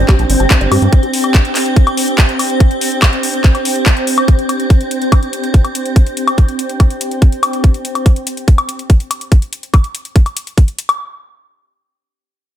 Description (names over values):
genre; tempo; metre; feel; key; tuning
psychedelic trance; 143 BPM; 4/4; straight; unclear; A4 = 440 Hz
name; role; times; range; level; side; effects
swarming drone; sustained chords; 0.0-7.6 s; C4 to C5; -18 LUFS; right 1 dB; built-in reverb, sidechain pumping
woody wave-folded pluck; riff; 0.0-0.8 s; G4 to A5; -22 LUFS; moving between left 8 dB and right 3 dB; chorus, auto-pan, sidechain pumping, digital delay
round analog bass; bass; 0.0-0.9 s; G1 to G2; -13 LUFS; equal; none
airy breathy pad; texture; 0.0-7.6 s; D4 to G5; -26 LUFS; equal; chorus, sidechain pumping
electronic kick drum; drums; 0.1-10.7 s; none; -8 LUFS; equal; none
garage drum kit; drums; 0.1-11.0 s; handclaps, hi-hat, woodblock; -18 LUFS; left 2 dB; none
room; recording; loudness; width
digital ambience; none; -11 LUFS; side -11 dB against mid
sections
0.0-11.0 A section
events
none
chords
0.0 G5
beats
0.09 0.51 | 0.93 1.34 1.76 2.18 | 2.60 3.02 3.44 3.86 | 4.28 4.70 5.12 5.54 | 5.96 6.38 6.80 7.22 | 7.64 8.06 8.48 8.90 | 9.32 9.74 10.16 10.57